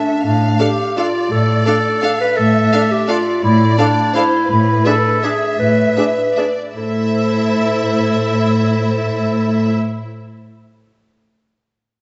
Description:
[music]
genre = classical, orchestral ballroom waltz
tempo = 150-182 BPM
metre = 3/4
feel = rubato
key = A minor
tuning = A4 = 440 Hz
[part]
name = clear clarinet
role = second line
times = 0.0-9.7 s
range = D4 to B4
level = -20 LUFS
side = equal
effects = none
[part]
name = warm studio violin section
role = second line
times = 0.0-9.7 s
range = B4 to F5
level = -26 LUFS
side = equal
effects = none
[part]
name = rich studio cello section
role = bass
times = 0.2-9.7 s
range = A2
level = -20 LUFS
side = equal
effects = none
[part]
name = rich studio violin section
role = melody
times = 0.6-9.7 s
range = E5 to F5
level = -28 LUFS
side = equal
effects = none
[part]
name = rich studio viola section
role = accompaniment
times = 0.6-9.7 s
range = D4 to A4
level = -25 LUFS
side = equal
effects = none
[sound]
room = wet scoring stage reverb, RT60 1.7 s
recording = nothing above 8.0 kHz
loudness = -16 LUFS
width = mono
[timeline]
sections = 0.0-6.8 A section; 6.8-9.0 B section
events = slowing down 4.0-6.8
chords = 0.2 Dm/A; 4.5 E7/A; 6.8 Am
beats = | 0.23 0.59 0.96 | 1.31 1.66 2.02 | 2.37 2.72 3.09 | 3.43 3.78 4.15 | 4.50 4.86 5.24 | 5.60 5.97 6.37 | 6.75 7.12 7.51 | 7.87 8.23 8.62

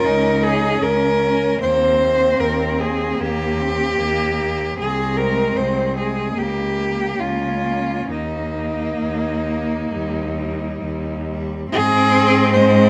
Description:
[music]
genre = classical, lyrical piece for cello ensemble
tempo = 64-78 BPM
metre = 4/4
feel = rubato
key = unclear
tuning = A4 = 444 Hz
[part]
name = rich cello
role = melody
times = 0.0-12.9 s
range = Eb4 to C5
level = -22 LUFS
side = equal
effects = none
[part]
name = rich cello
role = second line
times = 0.0-12.9 s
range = Bb3 to Eb4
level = -29 LUFS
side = equal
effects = none
[part]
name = clear cello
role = accompaniment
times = 0.0-12.9 s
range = G3 to Db4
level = -27 LUFS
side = equal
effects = none
[part]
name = rich cello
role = bass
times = 0.0-12.9 s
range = C2 to Ab2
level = -26 LUFS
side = equal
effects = none
[sound]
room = moderate scoring stage reverb, RT60 1.5 s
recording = close, detailed microphones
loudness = -19 LUFS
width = mono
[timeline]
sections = 0.0-11.7 A section; 11.7-12.9 B section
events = none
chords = 0.0 Db5; 1.6 Eb; 4.8 Ab/C; 6.4 Bbm/Db; 8.1 Eb5; 9.9 Eb; 11.7 Ab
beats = 0.04 0.82 | 1.61 2.40 3.20 3.99 | 4.78 5.57 6.36 7.18 | 8.09 9.01 9.92 10.82 | 11.70 12.53

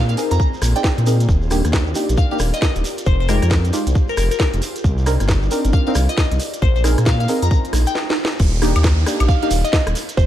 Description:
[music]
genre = UK garage, two-step garage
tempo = 135 BPM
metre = 4/4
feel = swing 63% on 16ths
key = Eb major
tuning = A4 = 440 Hz
[part]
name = glassy wavetable pluck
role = melody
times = 0.0-10.3 s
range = Bb4 to Bb5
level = -25 LUFS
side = left 1 dB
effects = chorus, digital delay
[part]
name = ethereal airy pad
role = sustained chords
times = 0.1-8.4 s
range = C4 to D5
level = -32 LUFS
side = equal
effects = ensemble chorus, built-in reverb, sidechain pumping
[part]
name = dark detuned saw bass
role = bass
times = 0.0-10.3 s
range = Eb1 to Bb2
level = -17 LUFS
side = equal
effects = none
[part]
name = garage drum kit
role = drums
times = 0.1-10.2 s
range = crash cymbal, hi-hat, rim click, snare drum, woodblock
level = -24 LUFS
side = equal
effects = none
[part]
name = shekere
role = percussion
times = 0.1-10.3 s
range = none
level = -33 LUFS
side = right 3 dB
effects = none
[part]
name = deep mellow chord stab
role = stabs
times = 0.2-9.5 s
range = Ab3 to D5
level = -23 LUFS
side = equal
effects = chorus, digital delay
[part]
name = electronic kick drum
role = drums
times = 0.4-10.3 s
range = none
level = -18 LUFS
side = equal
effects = none
[part]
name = swell and downlifter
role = sound effects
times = 7.7-10.3 s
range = none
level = -29 LUFS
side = right 4 dB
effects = none
[sound]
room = little or no reverb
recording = dark, warm production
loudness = -15 LUFS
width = side -12 dB against mid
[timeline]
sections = 0.0-8.4 A section; 8.4-10.3 B section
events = swell 7.7-8.4; break 8.0-8.4; drum fill 8.0-8.4; drop 8.4-10.3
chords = 0.0 Bb9sus4; 1.3 Ebmaj7; 2.8 Fm9; 4.6 Cm9; 6.4 Bb9sus4; 8.4 Ebmaj7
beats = 0.40 0.84 | 1.29 1.73 2.18 2.62 | 3.06 3.51 3.95 4.40 | 4.84 5.29 5.73 6.18 | 6.62 7.07 7.51 7.95 | 8.40 8.84 9.29 9.73 | 10.18

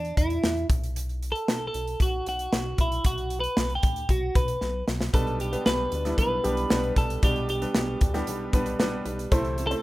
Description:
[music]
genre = piano-driven pop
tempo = 115 BPM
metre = 4/4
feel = straight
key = unclear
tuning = A4 = 443 Hz
[part]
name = twelve-string electric guitar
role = melody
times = 0.0-9.8 s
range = D4 to B4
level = -29 LUFS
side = equal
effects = none
[part]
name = chorused synth bass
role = bass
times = 0.0-9.7 s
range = B1 to E2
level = -32 LUFS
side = equal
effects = none
[part]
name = modern studio drum kit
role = drums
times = 0.0-9.8 s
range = hi-hat, kick drum, snare drum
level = -26 LUFS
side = equal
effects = none
[part]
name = bright upright piano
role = accompaniment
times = 5.1-9.8 s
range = B2 to D5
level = -29 LUFS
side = equal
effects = none
[part]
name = picked steel-string acoustic guitar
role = riff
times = 5.1-9.8 s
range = C3 to B4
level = -36 LUFS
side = right 4 dB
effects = none
[sound]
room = studio reverb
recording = rough home demo mix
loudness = -23 LUFS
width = side -18 dB against mid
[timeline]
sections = 0.0-9.8 A section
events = drum fill 4.6-5.1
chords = 0.0 N.C.; 0.7 B5; 5.1 G/B; 9.3 Am/C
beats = 0.43 | 0.96 1.48 2.00 2.52 | 3.05 3.57 4.09 4.62 | 5.14 5.66 6.18 6.71 | 7.23 7.75 8.27 8.79 | 9.32

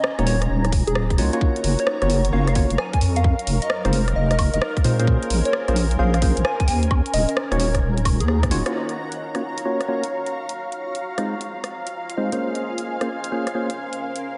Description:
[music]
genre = UK garage, two-step garage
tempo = 131 BPM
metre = 4/4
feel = swing 66% on 16ths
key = Bb minor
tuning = A4 = 440 Hz
[part]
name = garage drum kit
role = drums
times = 0.0-14.2 s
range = hi-hat, rim click, woodblock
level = -30 LUFS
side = equal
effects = none
[part]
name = granular cloud pad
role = texture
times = 0.0-14.4 s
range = Gb3 to Bb5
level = -33 LUFS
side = equal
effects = built-in reverb, analog chorus, sidechain pumping
[part]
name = percussive organ stab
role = stabs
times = 0.2-13.7 s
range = Ab3 to Db5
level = -29 LUFS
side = equal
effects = chorus, analog delay
[part]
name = deep soft wobble bass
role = bass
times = 0.2-8.6 s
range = Eb1 to Bb2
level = -22 LUFS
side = equal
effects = chorus
[part]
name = plucky unison lead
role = melody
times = 0.3-8.7 s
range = F4 to Ab5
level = -30 LUFS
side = equal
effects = analog delay
[part]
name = electronic kick drum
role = drums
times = 0.7-8.5 s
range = none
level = -23 LUFS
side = equal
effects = none
[part]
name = soft string machine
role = sustained chords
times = 1.8-14.4 s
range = Bb4 to F5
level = -36 LUFS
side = equal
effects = ensemble chorus, sidechain pumping
[sound]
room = moderate lush hall reverb, RT60 1.8 s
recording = dreamy mix soaked in reverb, nothing above 10.7 kHz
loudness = -22 LUFS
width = mono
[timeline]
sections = 0.0-8.7 A section; 8.7-14.4 B section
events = drum fill 8.3-8.7; band accent 8.6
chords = 0.0 Ebm7; 1.4 Gbmaj7; 3.0 Fm7; 5.1 Bbm9; 6.9 Ebm7; 8.7 Gbmaj7; 10.3 Fm7; 12.4 Bbm9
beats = 0.04 0.49 0.95 | 1.41 1.87 2.33 2.79 | 3.24 3.70 4.16 4.62 | 5.08 5.53 5.99 6.45 | 6.91 7.37 7.82 8.28 | 8.74 9.20 9.66 10.11 | 10.57 11.03 11.49 11.95 | 12.40 12.86 13.32 13.78 | 14.24

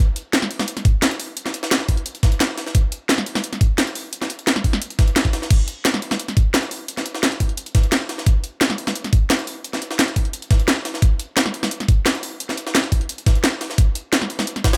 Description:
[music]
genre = drum and bass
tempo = 174 BPM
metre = 4/4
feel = straight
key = none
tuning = none
[part]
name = drum and bass drum kit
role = drums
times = 0.2-14.7 s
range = crash cymbal, hi-hat, snare drum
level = -24 LUFS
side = equal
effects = none
[part]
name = jungle sampler-style drum kit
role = drums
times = 0.2-14.8 s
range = hi-hat, snare drum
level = -27 LUFS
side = equal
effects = high-pass filter on hats, high-pass filter on snare, high-pass filter on room
[part]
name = electronic kick drum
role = drums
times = 0.8-14.7 s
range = none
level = -18 LUFS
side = equal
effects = none
[sound]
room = little or no reverb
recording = none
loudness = -20 LUFS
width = mono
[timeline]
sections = 0.0-14.8 A section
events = none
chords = none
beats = 0.33 0.68 1.02 | 1.37 1.71 2.06 2.40 | 2.75 3.09 3.44 3.78 | 4.13 4.47 4.82 5.16 | 5.51 5.85 6.20 6.54 | 6.89 7.23 7.58 7.92 | 8.27 8.61 8.96 9.30 | 9.64 9.99 10.33 10.68 | 11.02 11.37 11.71 12.06 | 12.40 12.75 13.09 13.44 | 13.78 14.13 14.47

